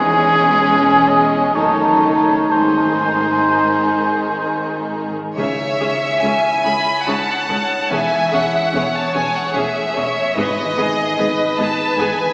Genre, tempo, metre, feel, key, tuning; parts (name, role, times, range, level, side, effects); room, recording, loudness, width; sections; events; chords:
classical, slow romantic movement for symphony orchestra; 60-76 BPM; 3/4; rubato; C# minor; A4 = 442 Hz
rich chamber violin section; melody; 0.0-12.3 s; G#4 to B5; -21 LUFS; equal
mellow clarinet; second line; 0.0-5.0 s; C#4 to D#4; -23 LUFS; equal
mellow hollow large flute ensemble; second line; 0.0-5.0 s; G#5 to A5; -20 LUFS; equal
rich chamber violin section; second line; 0.0-12.3 s; C#4 to G#5; -22 LUFS; equal
warm oboe; second line; 0.0-4.9 s; G#4 to D#5; -17 LUFS; equal
rich chamber viola section; accompaniment; 0.0-12.1 s; D#3 to G#4; -25 LUFS; equal
mellow French horn section; sustained chords; 0.0-5.0 s; G#3 to D#4; -22 LUFS; equal
concert harp; arpeggios; 0.0-12.3 s; F#2 to D#5; -27 LUFS; equal
clear chamber double bass section; bass; 0.0-12.1 s; E1 to C#2; -31 LUFS; equal
warm symphonic cello section; bass; 0.0-12.1 s; C#2 to G#2; -27 LUFS; equal
timpani; percussion; 5.4-11.5 s; G#2 to C#3; -33 LUFS; equal
wet church reverb, RT60 2.8 s; small speaker sound; -14 LUFS; side -28 dB against mid
0.0-5.4 A section; 5.4-12.3 B section
0.0 C#m/E; 1.6 D#dim/F#; 2.5 G#; 5.4 C#m; 7.9 C#m/E; 10.4 G#m